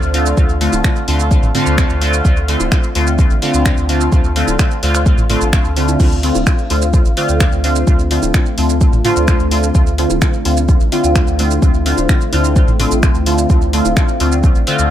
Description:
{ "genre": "dub techno", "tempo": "128 BPM", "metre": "4/4", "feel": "straight", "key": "D minor", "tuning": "A4 = 437 Hz", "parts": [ { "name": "soft dub sub bass", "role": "bass", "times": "0.0-14.9 s", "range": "D1 to D2", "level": "-17 LUFS", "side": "equal", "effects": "sidechain pumping" }, { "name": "deep house drum kit", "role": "drums", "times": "0.0-14.9 s", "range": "crash cymbal, finger snaps, hi-hat, shaker", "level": "-22 LUFS", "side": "right 1 dB", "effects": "none" }, { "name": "resonant sweep polysynth", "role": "stabs", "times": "0.1-14.9 s", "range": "D3 to F4", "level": "-16 LUFS", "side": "equal", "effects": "chorus, phaser, sidechain pumping, dub echo" }, { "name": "electronic kick drum", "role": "drums", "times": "0.4-14.5 s", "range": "none", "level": "-13 LUFS", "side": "equal", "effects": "none" }, { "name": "electronic bongos and toms", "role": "percussion", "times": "0.7-13.9 s", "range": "none", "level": "-25 LUFS", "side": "equal", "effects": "sidechain pumping on perc, sidechain pumping on toms, dub echo" }, { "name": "deep dark ambient pad", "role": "sustained chords", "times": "7.5-14.9 s", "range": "A3 to F4", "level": "-24 LUFS", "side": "left 2 dB", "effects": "chorus, built-in reverb, vintage 12-bit sampler grit, sidechain pumping" } ], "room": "little or no reverb", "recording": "none", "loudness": "-11 LUFS", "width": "side -11 dB against mid", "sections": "0.0-14.9 A section", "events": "none", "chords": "0.0 Dm7" }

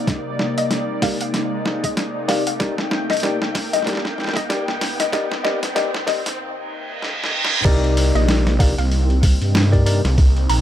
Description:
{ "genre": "glitch hop", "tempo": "95 BPM", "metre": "4/4", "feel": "swing 58% on 16ths", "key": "C minor", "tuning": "A4 = 440 Hz", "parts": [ { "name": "woody wave-folded pluck", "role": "melody", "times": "0.0-10.6 s", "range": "Eb5 to Bb5", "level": "-25 LUFS", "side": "left 3 dB", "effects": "analog chorus, digital delay" }, { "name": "warm analog pad", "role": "sustained chords", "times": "0.0-10.6 s", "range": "C3 to G5", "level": "-27 LUFS", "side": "left 1 dB", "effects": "lush chorus, sidechain pumping" }, { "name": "riser and reverse cymbal", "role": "sound effects", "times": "0.0-7.7 s", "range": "none", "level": "-27 LUFS", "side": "right 2 dB", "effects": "none" }, { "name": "boom bap sampler-style drum kit", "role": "drums", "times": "0.1-10.6 s", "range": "crash cymbal, hi-hat, snare drum", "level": "-24 LUFS", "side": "equal", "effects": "overdrive" }, { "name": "electronic kick drum", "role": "drums", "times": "0.1-10.3 s", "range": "none", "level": "-17 LUFS", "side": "equal", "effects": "overdrive" }, { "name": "tine electric piano", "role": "stabs", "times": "1.0-10.0 s", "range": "Eb4 to D5", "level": "-26 LUFS", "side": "left 2 dB", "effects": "sidechain pumping, digital delay" }, { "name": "phased detuned saw bass", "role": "bass", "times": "7.7-10.6 s", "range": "Bb1 to G2", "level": "-17 LUFS", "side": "equal", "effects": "phaser, tube saturation" } ], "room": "light reverb", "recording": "high-pass filter", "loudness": "-17 LUFS", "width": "side -11 dB against mid", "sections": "0.0-7.7 A section; 7.7-10.6 B section", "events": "build-up 0.0-7.7; drum fill 0.0-6.4, 7.0-7.7; riser 0.0-6.4; filter sweep on tine electric piano 0.0-7.7; filter sweep on synth pluck 0.0-7.7; filter sweep 0.0-7.7; reverse cymbal 6.4-7.7; drop 7.7-10.6", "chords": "0.0 Cm9" }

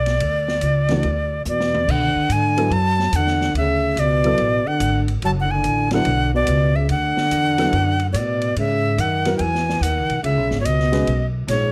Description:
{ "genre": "modal jazz", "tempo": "144 BPM", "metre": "4/4", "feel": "swing 65% on 8ths", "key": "B dorian", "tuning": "A4 = 444 Hz", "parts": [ { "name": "breathy bright jazz flute", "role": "melody", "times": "0.0-11.7 s", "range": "C#5 to A5", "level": "-24 LUFS", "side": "equal", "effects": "none" }, { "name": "upright bass", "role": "bass", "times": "0.0-11.7 s", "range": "F#1 to B2", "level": "-24 LUFS", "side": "equal", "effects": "none" }, { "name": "open jazz drum kit", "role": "drums", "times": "0.1-11.6 s", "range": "crash cymbal, hi-hat, kick drum, ride cymbal, snare drum, toms", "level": "-33 LUFS", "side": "equal", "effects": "none" }, { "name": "dark grand piano", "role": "accompaniment", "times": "0.9-11.1 s", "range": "E3 to B4", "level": "-26 LUFS", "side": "equal", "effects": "plate reverb" }, { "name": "breathy trombone", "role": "second line", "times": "1.5-11.7 s", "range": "G#2 to F#3", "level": "-26 LUFS", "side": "equal", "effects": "none" } ], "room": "moderate studio reverb, RT60 0.6 s", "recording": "none", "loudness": "-19 LUFS", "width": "mono", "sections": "0.0-1.9 A section; 1.9-11.7 B section", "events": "drum fill 1.5-1.9", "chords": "0.0 Bmadd9; 1.9 Bm9; 8.6 C#m9" }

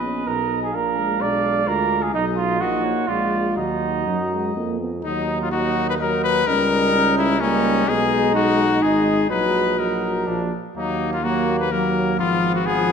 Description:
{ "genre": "classical, brass quintet", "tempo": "127 BPM", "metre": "3/4", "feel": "straight", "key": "Eb minor", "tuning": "A4 = 440 Hz", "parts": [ { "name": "clear cornet", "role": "melody", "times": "0.0-12.9 s", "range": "Db4 to F5", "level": "-23 LUFS", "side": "left 7 dB", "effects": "none" }, { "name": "clear flugelhorn", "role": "second line", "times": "0.0-12.9 s", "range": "Bb3 to D5", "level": "-24 LUFS", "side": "right 6 dB", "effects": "none" }, { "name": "dark euphonium", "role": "accompaniment", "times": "0.0-12.9 s", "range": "F3 to Gb4", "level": "-25 LUFS", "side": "right 2 dB", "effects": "none" }, { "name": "mellow French horn", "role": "accompaniment", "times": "0.0-12.9 s", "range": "F3 to Gb4", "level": "-27 LUFS", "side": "left 3 dB", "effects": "none" }, { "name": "warm bass trombone", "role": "bass", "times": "0.0-12.9 s", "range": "Ab1 to Gb2", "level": "-28 LUFS", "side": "right 2 dB", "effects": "none" } ], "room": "wet scoring stage reverb, RT60 1.9 s", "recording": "minimal, uncompressed stereo recording", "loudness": "-18 LUFS", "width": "side -6 dB against mid", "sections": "0.0-5.1 A section; 5.1-12.9 B section", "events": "none", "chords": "0.0 N.C.; 0.7 Bb7; 2.1 B; 2.6 Ebm/Bb; 3.1 Bb7; 3.6 Ebm; 6.5 Eb7/Db; 7.9 Abm/Cb; 9.3 Ebm/Bb; 10.3 Bb; 10.8 Ebm; 12.2 Fdim/Ab" }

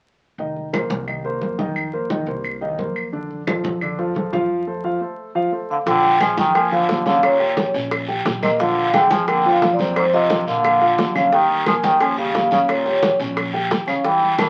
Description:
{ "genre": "Afro-Cuban jazz", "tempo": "176 BPM", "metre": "4/4", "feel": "straight", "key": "unclear", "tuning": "A4 = 440 Hz", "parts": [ { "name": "warm concert grand piano", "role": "accompaniment", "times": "0.4-14.5 s", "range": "D3 to G5", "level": "-26 LUFS", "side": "equal", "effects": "none" }, { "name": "upright bass", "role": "bass", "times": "0.4-14.5 s", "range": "F1 to F2", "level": "-35 LUFS", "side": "equal", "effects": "none" }, { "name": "congas", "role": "percussion", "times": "0.4-14.5 s", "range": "none", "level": "-30 LUFS", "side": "equal", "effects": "none" }, { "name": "claves", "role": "percussion", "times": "0.7-4.0, 6.2-14.5 s", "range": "none", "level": "-31 LUFS", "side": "equal", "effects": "none" }, { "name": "vibraphone with medium mallets", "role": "melody", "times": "5.7-14.5 s", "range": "C5 to A5", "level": "-20 LUFS", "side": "equal", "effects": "none" }, { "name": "trombone with metal mute", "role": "second line", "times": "5.7-14.5 s", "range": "Ab2 to F3", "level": "-26 LUFS", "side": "equal", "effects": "none" }, { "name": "bongos", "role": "percussion", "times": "5.9-14.5 s", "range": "none", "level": "-29 LUFS", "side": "equal", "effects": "none" }, { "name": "guiro", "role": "percussion", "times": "5.9-14.5 s", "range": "none", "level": "-33 LUFS", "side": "equal", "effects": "none" } ], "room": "moderate small room reverb, RT60 0.5 s", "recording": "very old 78 rpm record, vinyl crackle", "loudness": "-19 LUFS", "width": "mono", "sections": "0.4-5.9 A section; 5.9-14.5 B section", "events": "none", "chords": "0.4 F7sus4; 3.1 F6; 4.5 F; 5.9 Bb6; 7.2 Eb7; 8.6 Bb9; 10.0 F5; 10.6 Bb; 11.3 Eb9" }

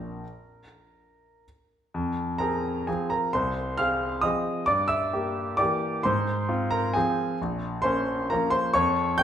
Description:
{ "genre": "classical, piano waltz", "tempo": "112-138 BPM", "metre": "3/4", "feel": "rubato", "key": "F minor", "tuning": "A4 = 438 Hz", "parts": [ { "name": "clear grand piano", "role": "solo", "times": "0.0-9.2 s", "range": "Bb1 to G6", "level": "-24 LUFS", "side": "equal", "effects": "none" } ], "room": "moderate recital hall reverb, RT60 1.4 s", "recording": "minimal, uncompressed stereo recording", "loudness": "-24 LUFS", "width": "side -9 dB against mid", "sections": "0.0-1.9 A section; 1.9-9.2 B section", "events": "none", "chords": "0.0 N.C.; 1.9 Fm; 4.7 Edim/G; 6.1 Fm/Ab; 7.4 Bbm" }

